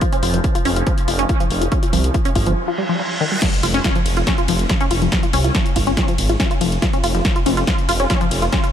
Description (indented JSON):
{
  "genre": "driving peak-time techno",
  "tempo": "141 BPM",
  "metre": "4/4",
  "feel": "straight",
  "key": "F minor",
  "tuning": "A4 = 440 Hz",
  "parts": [
    { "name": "tight sequenced synth", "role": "riff", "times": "0.0-8.7 s", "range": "Eb3 to F4", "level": "-21 LUFS", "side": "left 1 dB", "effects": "chorus, sidechain pumping, diffuse ambient delay" },
    { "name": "overtone-sweeping drone", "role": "drone", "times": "0.0-2.6 s", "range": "F3", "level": "-30 LUFS", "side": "right 1 dB", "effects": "chorus, built-in reverb, phaser, sidechain pumping" },
    { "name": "electronic kick drum", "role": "drums", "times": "0.0-8.6 s", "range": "none", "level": "-20 LUFS", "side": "equal", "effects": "overdrive" },
    { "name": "punchy analog drum machine", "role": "drums", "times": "0.0-8.7 s", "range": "crash cymbal, hi-hat, ride cymbal, snare drum", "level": "-23 LUFS", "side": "equal", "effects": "none" },
    { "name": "detuned saw bass", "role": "bass", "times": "0.2-8.5 s", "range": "F1 to C2", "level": "-20 LUFS", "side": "equal", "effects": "sidechain pumping" },
    { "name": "reverse cymbal and impact", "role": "sound effects", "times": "2.7-5.1 s", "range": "none", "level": "-28 LUFS", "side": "right 1 dB", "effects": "none" }
  ],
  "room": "light reverb, digital ambience",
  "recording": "none",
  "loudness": "-15 LUFS",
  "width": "side -9 dB against mid",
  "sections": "0.0-3.4 A section; 3.4-8.7 B section",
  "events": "break 2.6-3.4; reverse cymbal 2.7-3.4; drop 3.4-8.7; impact 3.4-5.1",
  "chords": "0.0 F5"
}